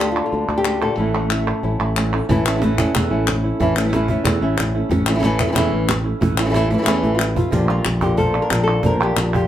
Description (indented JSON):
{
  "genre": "flamenco",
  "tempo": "183 BPM",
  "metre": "4/4",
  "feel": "straight",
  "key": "A phrygian dominant",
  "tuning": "A4 = 440 Hz",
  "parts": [
    { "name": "flamenco guitar", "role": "melody", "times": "0.0-9.5 s", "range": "A2 to Bb4", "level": "-20 LUFS", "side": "left 1 dB", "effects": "plate reverb" },
    { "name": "flamenco guitar", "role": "stabs", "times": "0.0-9.5 s", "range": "D3 to F4", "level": "-25 LUFS", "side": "right 3 dB", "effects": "none" },
    { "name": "sustaining fretless electric bass", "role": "bass", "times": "0.0-9.5 s", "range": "A1 to E2", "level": "-22 LUFS", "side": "equal", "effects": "none" },
    { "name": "palmas hand claps", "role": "percussion", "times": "0.2-9.5 s", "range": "none", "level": "-24 LUFS", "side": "left 2 dB", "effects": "none" },
    { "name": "cajon", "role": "percussion", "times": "2.3-9.5 s", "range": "none", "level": "-24 LUFS", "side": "right 2 dB", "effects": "none" }
  ],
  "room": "wet small room reverb, RT60 0.5 s",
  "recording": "heard from further back in the room",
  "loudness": "-16 LUFS",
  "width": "side -11 dB against mid",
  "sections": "0.0-2.3 A section; 2.3-7.5 B section; 7.5-9.5 C section",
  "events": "drum fill 6.7-7.5",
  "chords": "0.0 Dm; 1.0 A; 7.5 Bb",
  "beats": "0.32 0.65 | 0.98 1.31 1.64 1.96 | 2.29 2.62 2.95 3.27 | 3.60 3.93 4.25 4.58 | 4.91 5.23 5.56 5.89 | 6.21 6.54 6.87 7.19 | 7.52 7.85 8.18 8.51 | 8.83 9.16"
}